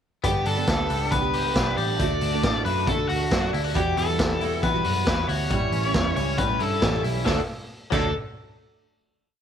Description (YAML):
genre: jangly indie pop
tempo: 137 BPM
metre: 4/4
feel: straight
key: D major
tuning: A4 = 440 Hz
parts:
  - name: biting lead guitar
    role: melody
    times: 0.2-8.1 s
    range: F#4 to D5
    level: -27 LUFS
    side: left 4 dB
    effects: overdrive, slapback echo
  - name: picked twelve-string acoustic guitar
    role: accompaniment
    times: 0.2-8.1 s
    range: D3 to G4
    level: -30 LUFS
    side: right 13 dB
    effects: none
  - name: direct-recorded clean electric guitar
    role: arpeggios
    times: 0.2-8.1 s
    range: F#3 to G4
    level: -32 LUFS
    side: left 12 dB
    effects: analog chorus, slapback echo
  - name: vintage muted picked electric bass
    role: bass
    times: 0.2-8.1 s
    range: G1 to E3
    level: -28 LUFS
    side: equal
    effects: none
  - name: raw garage drum kit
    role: drums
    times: 0.2-8.0 s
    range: crash cymbal, hi-hat, kick drum, snare drum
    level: -26 LUFS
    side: equal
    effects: none
room: small room ambience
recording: 1960s-style stereo with parts hard left and right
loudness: -21 LUFS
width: side -8 dB against mid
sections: 0.2-7.3 pre-chorus; 7.3-9.0 final chord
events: none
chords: 0.2 G; 2.0 D; 3.8 Emadd9; 5.5 A7; 7.3 D